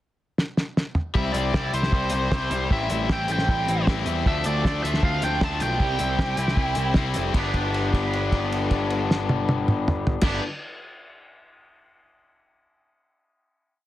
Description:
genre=indie rock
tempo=155 BPM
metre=4/4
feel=straight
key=G mixolydian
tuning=A4 = 440 Hz
part: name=cloth-damped thuddy drum kit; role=drums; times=0.4-10.3 s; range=crash cymbal, hi-hat, kick drum, snare drum, toms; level=-24 LUFS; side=equal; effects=none
part: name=biting lead guitar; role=melody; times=1.1-6.9 s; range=C5 to A5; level=-27 LUFS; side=right 1 dB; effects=overdrive, slapback echo
part: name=overdriven electric guitar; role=riff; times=1.1-10.4 s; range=E3 to E4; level=-28 LUFS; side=left 8 dB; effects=none
part: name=twangy electric guitar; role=riff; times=1.2-10.4 s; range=F3 to A4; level=-33 LUFS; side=right 9 dB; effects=lush chorus, slapback echo
part: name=fuzz picked electric bass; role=bass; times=1.2-10.4 s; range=F1 to E2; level=-27 LUFS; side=equal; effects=overdrive
room=small room ambience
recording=dense, heavily limited modern master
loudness=-21 LUFS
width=side -14 dB against mid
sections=0.0-1.2 pickup bar; 1.2-7.4 pre-chorus; 7.4-10.5 final chord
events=drum fill 0.4-1.2; held note 7.4-10.2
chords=0.0 N.C.; 1.2 C; 2.7 Am7; 4.3 Dm7; 5.8 C; 7.4 G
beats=0.38 0.77 | 1.16 1.55 1.93 2.32 | 2.71 3.10 3.48 3.87 | 4.26 4.65 5.03 5.42 | 5.81 6.20 6.58 6.97 | 7.36 7.75 8.13 8.52 | 8.91 9.30 9.69 10.08

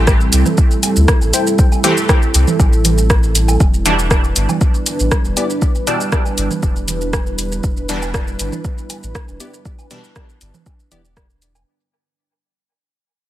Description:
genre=dub techno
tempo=119 BPM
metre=4/4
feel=straight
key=unclear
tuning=A4 = 440 Hz
part: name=dark analog pad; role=sustained chords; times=0.0-11.6 s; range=G3 to B4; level=-21 LUFS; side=right 1 dB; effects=chorus, sidechain pumping
part: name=soft dub sub bass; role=bass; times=0.0-11.6 s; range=E1 to D2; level=-17 LUFS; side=equal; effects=sidechain pumping
part: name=deep house drum kit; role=drums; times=0.1-11.6 s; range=hi-hat, rim click, shaker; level=-20 LUFS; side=equal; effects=overdrive
part: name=electronic kick drum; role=drums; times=0.1-11.3 s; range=none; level=-14 LUFS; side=equal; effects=overdrive
part: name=congas and woodblock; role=percussion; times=0.5-11.6 s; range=none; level=-23 LUFS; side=right 5 dB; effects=overdrive, sidechain pumping on perc, dub echo
part: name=wavetable chord stab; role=riff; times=1.3-2.2, 5.4-6.2, 9.4-11.0 s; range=B3 to G5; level=-24 LUFS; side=left 3 dB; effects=sidechain pumping, dub echo
part: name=resonant sweep polysynth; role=stabs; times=1.8-10.0 s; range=B2 to G4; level=-21 LUFS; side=equal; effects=chorus, phaser, sidechain pumping, dub echo
room=light reverb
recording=dense, heavily limited modern master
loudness=-13 LUFS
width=side -14 dB against mid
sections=0.0-11.7 A section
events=fade-out 3.6-11.7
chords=0.0 Am7; 3.6 Em7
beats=0.07 0.58 1.08 | 1.59 2.09 2.60 3.10 | 3.60 4.11 4.61 5.12 | 5.62 6.12 6.63 7.13 | 7.64 8.14 8.65 9.15 | 9.65 10.16 10.66 11.17

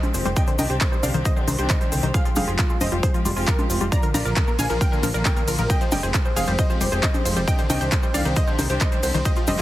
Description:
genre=uplifting trance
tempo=135 BPM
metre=4/4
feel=straight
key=F dorian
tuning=A4 = 442 Hz
part: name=wide unison pluck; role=melody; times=0.0-9.6 s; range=F4 to Bb5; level=-28 LUFS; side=right 1 dB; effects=sidechain pumping, digital delay
part: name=dark baby grand piano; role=second line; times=0.0-9.6 s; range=F4 to Bb5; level=-33 LUFS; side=equal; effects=none
part: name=warm studio string section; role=sustained chords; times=0.0-9.6 s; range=D3 to G4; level=-30 LUFS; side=left 1 dB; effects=sidechain pumping
part: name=wide unison pluck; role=arpeggios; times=0.0-9.6 s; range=D3 to D5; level=-30 LUFS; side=left 3 dB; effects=auto-pan, sidechain pumping, digital delay
part: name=big-room dance drum kit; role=drums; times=0.0-9.6 s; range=congas, handclaps, hi-hat, ride cymbal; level=-27 LUFS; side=equal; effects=none
part: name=cabasa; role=percussion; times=0.0-9.6 s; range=none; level=-34 LUFS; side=left 4 dB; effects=none
part: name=plucky analog bass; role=bass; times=0.1-9.6 s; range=F1 to C2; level=-25 LUFS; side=equal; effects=sidechain pumping
part: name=electronic kick drum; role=drums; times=0.4-9.3 s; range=none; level=-21 LUFS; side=equal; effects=none
room=digital ambience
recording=heavily compressed radio sound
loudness=-19 LUFS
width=side -15 dB against mid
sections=0.0-9.6 A section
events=none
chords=0.4 Cmadd9; 2.1 Fmadd9; 3.9 Bb; 5.7 Fmadd9; 7.5 Cmadd9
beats=| 0.36 0.81 1.25 1.70 | 2.14 2.59 3.03 3.48 | 3.92 4.37 4.81 5.25 | 5.70 6.14 6.59 7.03 | 7.48 7.92 8.37 8.81 | 9.25

